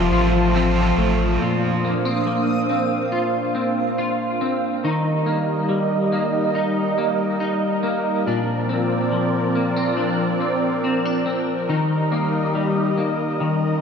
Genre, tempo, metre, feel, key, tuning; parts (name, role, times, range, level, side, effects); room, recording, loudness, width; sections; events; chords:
dream pop; 70 BPM; 4/4; straight; Bb major; A4 = 439 Hz
cranked stack guitar; accompaniment; 0.0-1.9 s; F3 to F4; -27 LUFS; right 4 dB; overdrive, tremolo, analog chorus
warm analog pad; sustained chords; 0.0-13.8 s; F3 to C6; -22 LUFS; right 2 dB; chorus
semi-hollow electric guitar; arpeggios; 0.0-13.8 s; Bb2 to F4; -22 LUFS; left 2 dB; ensemble chorus, diffuse ambient delay
warm sub bass; bass; 0.0-1.4 s; A1; -21 LUFS; equal
backwards swelling texture; texture; 1.3-1.8 s; Eb6; -35 LUFS; left 2 dB; built-in reverb, diffuse ambient delay
wet plate reverb, RT60 3.6 s; dreamy mix soaked in reverb; -18 LUFS; side -6 dB against mid
0.0-1.4 A section; 1.4-13.8 B section
0.0 F; 1.4 Bbadd9; 4.8 Eb; 8.3 Bbadd9; 11.7 Eb